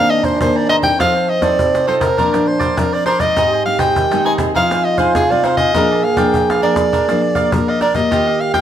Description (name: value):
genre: samba and choro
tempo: 101 BPM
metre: 4/4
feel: straight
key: unclear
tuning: A4 = 443 Hz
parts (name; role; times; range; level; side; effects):
- clear soprano saxophone; melody; 0.0-8.6 s; Ab4 to Ab5; -16 LUFS; equal; none
- growling trombone; second line; 0.0-8.6 s; C4 to Ab4; -18 LUFS; right 4 dB; none
- cavaquinho; accompaniment; 0.0-8.6 s; D4 to Bb5; -22 LUFS; right 2 dB; none
- nylon-string guitar; accompaniment; 0.0-8.6 s; Ab2 to A4; -20 LUFS; left 4 dB; none
- cajon; drums; 0.1-8.6 s; none; -23 LUFS; equal; none
room: moderate studio reverb, RT60 0.9 s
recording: minimal, uncompressed stereo recording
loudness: -12 LUFS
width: side -10 dB against mid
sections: 0.0-8.6 A section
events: none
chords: 0.0 Abadd9/Eb; 1.0 F7; 2.2 Bbadd9; 3.4 Ab; 4.6 Fm7; 5.7 Bb